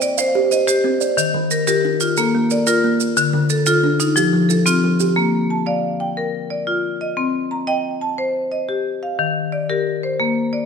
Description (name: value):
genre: southern african traditional, mbira-style interlocking cycle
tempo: 120 BPM (dotted quarters)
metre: 12/8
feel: straight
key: Bb major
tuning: A4 = 440 Hz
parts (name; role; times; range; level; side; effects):
- kalimba; arpeggios; 0.0-5.5 s; D3 to F5; -22 LUFS; right 8 dB; slapback echo
- marimba with hard mallets; arpeggios; 0.0-10.7 s; D3 to Bb5; -17 LUFS; left 3 dB; none
- maracas; percussion; 0.0-5.2 s; none; -25 LUFS; right 10 dB; none
room: moderate recital hall reverb, RT60 1.4 s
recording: none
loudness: -16 LUFS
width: side -6 dB against mid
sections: 0.0-5.2 A section; 5.2-10.7 A section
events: none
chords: 0.0 Cm; 1.2 Eb; 2.2 Bb; 3.2 Dm; 4.2 F; 5.2 Bb; 7.2 Cm; 9.2 Eb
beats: 0.18 0.68 | 1.17 1.67 2.17 2.67 | 3.17 3.67 4.17 4.67 | 5.17 5.67 6.17 6.67 | 7.18 7.68 8.19 8.69 | 9.19 9.70 10.20